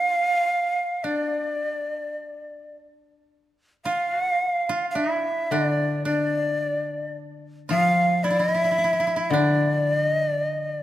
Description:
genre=japanese traditional, Japanese chamber music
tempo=55 BPM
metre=4/4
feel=rubato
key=D minor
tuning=A4 = 444 Hz
part: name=breathy bright shakuhachi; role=melody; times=0.0-10.8 s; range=D5 to F5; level=-23 LUFS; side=equal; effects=none
part: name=koto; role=second line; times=0.0-10.8 s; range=D4 to F4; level=-29 LUFS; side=equal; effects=none
part: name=koto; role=accompaniment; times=5.5-10.8 s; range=D3 to F3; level=-27 LUFS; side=left 2 dB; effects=none
room=moderate concert hall reverb, RT60 2.0 s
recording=none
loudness=-21 LUFS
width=side -13 dB against mid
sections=0.0-3.3 A section; 3.3-10.8 B section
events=none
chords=none

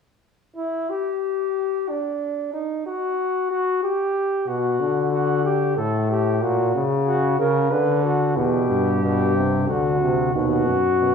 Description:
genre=classical, imitative canzona for brass ensemble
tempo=92 BPM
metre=3/4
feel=straight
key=unclear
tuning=A4 = 437 Hz
part: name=mellow flugelhorn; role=second line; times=0.6-11.1 s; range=D4 to B4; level=-22 LUFS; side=left 1 dB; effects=none
part: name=clear trombone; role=accompaniment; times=4.5-11.1 s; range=A2 to D3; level=-22 LUFS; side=left 1 dB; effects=none
part: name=mellow bass trombone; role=bass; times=8.4-11.1 s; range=D2 to G2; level=-22 LUFS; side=right 1 dB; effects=none
room=wet recital hall reverb, RT60 1.5 s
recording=worn, warbling old tape, cassette tape, warbly pitch drift, small room reverb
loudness=-19 LUFS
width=side -6 dB against mid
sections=0.6-11.1 A section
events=none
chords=0.6 N.C.; 4.5 Bm; 5.8 Gsus2/A; 6.4 F#/A#; 7.7 Bm/D; 8.4 Em; 9.7 D; 10.3 B/D#

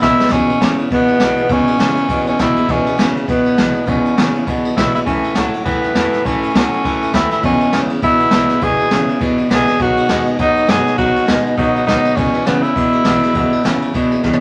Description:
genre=rockabilly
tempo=202 BPM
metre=4/4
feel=swing 58% on 8ths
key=E major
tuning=A4 = 440 Hz
part: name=raspy tenor saxophone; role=melody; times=0.0-14.2 s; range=B3 to G#4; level=-19 LUFS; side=equal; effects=none
part: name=picked steel-string acoustic guitar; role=accompaniment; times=0.0-14.4 s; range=C#3 to C#5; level=-28 LUFS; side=equal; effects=none
part: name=twangy electric guitar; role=riff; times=0.0-14.4 s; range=E2 to G#3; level=-19 LUFS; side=equal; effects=none
part: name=upright bass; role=bass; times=0.0-14.4 s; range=E1 to A2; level=-33 LUFS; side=equal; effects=none
part: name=jazz brush drum kit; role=drums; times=0.0-14.4 s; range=kick drum, ride cymbal, snare drum, toms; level=-22 LUFS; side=equal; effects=none
room=moderate studio reverb, RT60 0.8 s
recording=vinyl crackle, nothing above 10.7 kHz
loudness=-15 LUFS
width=mono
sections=0.3-14.4 A section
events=drum fill 0.2, 14.2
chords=0.3 E6; 5.1 A6; 7.4 E6; 9.8 B6; 12.2 E6

